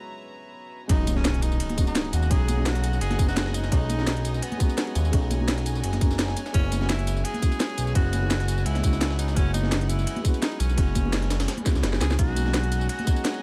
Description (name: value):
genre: liquid drum and bass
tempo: 170 BPM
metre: 4/4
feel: swing 53% on 16ths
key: B major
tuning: A4 = 440 Hz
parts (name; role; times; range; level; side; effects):
- felt-muted upright piano; accompaniment; 0.0-13.4 s; G#3 to F#4; -35 LUFS; equal; dub echo
- rich chamber string section; sustained chords; 0.0-13.4 s; B4 to A#5; -42 LUFS; equal; sidechain pumping
- breathy tenor saxophone; melody; 0.9-13.4 s; B3 to G#4; -36 LUFS; equal; dub echo
- smooth synth bass; bass; 0.9-12.9 s; F#1 to D#2; -28 LUFS; equal; none
- breakbeat sampler-style drum kit; drums; 0.9-13.4 s; ride cymbal, snare drum; -37 LUFS; equal; high-pass filter on cymbals, high-pass filter on snare, dub echo
- drum and bass drum kit; drums; 0.9-13.3 s; hi-hat, snare drum, tambourine; -33 LUFS; equal; none
- electronic kick drum; drums; 0.9-13.1 s; none; -25 LUFS; equal; none
- impact; sound effects; 0.9-2.3 s; none; -35 LUFS; equal; none
- congas; percussion; 1.1-13.1 s; none; -38 LUFS; equal; dub echo
room: little or no reverb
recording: echo-heavy mix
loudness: -24 LUFS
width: mono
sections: 0.9-13.4 A section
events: break 0.0-0.9; drop 0.9-13.4; impact 0.9-2.3; drum fill 11.7-12.2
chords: 0.0 F#9sus4; 0.9 B6; 6.4 F#9sus4; 12.2 B6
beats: 0.19 0.54 | 0.89 1.25 1.60 1.95 | 2.31 2.66 3.01 3.37 | 3.72 4.07 4.42 4.78 | 5.13 5.48 5.83 6.19 | 6.54 6.89 7.25 7.60 | 7.95 8.31 8.66 9.01 | 9.37 9.72 10.07 10.42 | 10.78 11.13 11.48 11.84 | 12.19 12.54 12.89 13.25